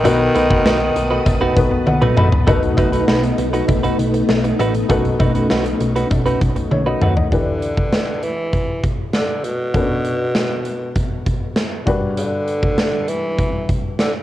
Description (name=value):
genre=1980s-style pop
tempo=99 BPM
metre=4/4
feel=straight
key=unclear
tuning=A4 = 441 Hz
part: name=raspy tenor saxophone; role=melody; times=0.0-1.9, 7.3-14.1 s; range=B2 to E3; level=-21 LUFS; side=equal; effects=cassette tape, tape echo, plate reverb
part: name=dark baby grand piano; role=accompaniment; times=0.0-14.2 s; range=G2 to B5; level=-23 LUFS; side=left 3 dB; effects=cassette tape, plate reverb
part: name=ensemble organ-string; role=sustained chords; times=0.0-7.3 s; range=A3 to D#6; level=-22 LUFS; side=left 1 dB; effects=ensemble chorus, cassette tape, plate reverb
part: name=direct-recorded clean electric guitar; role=riff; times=0.0-7.2 s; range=A3 to B4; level=-22 LUFS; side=right 3 dB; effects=wide subtle chorus, cassette tape, tape echo
part: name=hollow-body short-scale picked electric bass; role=bass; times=0.0-7.2 s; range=A1 to D#2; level=-23 LUFS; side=equal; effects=none
part: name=cowbell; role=percussion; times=0.0-7.2 s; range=none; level=-30 LUFS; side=left 5 dB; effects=none
part: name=big rock drum kit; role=drums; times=0.1-14.1 s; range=hi-hat, kick drum, snare drum, tambourine, toms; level=-19 LUFS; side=equal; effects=cassette tape
room=light reverb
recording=home recording on cassette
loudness=-15 LUFS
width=side -14 dB against mid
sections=0.0-2.5 A section; 2.5-7.3 B section; 7.3-14.2 C section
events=grand piano fill 1.6-2.5; drum fill 1.9-2.5, 6.7-7.3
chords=0.0 B7; 7.3 Em7; 9.7 Bm7; 11.9 Gmaj7